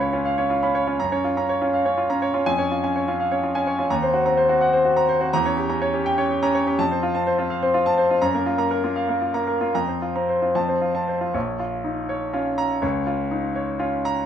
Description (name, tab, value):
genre	classical, virtuoso piano study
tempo	82 BPM (dotted quarters)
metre	6/8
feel	rubato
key	Bb minor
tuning	A4 = 441 Hz
part	clear baby grand piano	solo	0.0-14.3 s	Bb1 to Cb6	-19 LUFS	equal	none
room	light reverb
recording	minimal, uncompressed stereo recording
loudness	-19 LUFS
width	side -9 dB against mid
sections	0.0-11.3 A section; 11.3-14.3 B section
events	none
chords	0.0 Db7; 1.0 Gbmaj7; 2.5 Db/F; 3.9 Cm7b5/Eb; 5.3 Edim7; 6.8 F; 8.2 Gbmaj7; 9.7 Fsus4; 10.5 F; 11.3 Bbm; 12.8 Bbm/Db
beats	0.25 | 1.00 1.74 | 2.47 3.19 | 3.90 4.61 | 5.33 6.06 | 6.78 7.50 | 8.21 8.96 | 9.74 10.55 | 11.35 12.09 | 12.83 13.56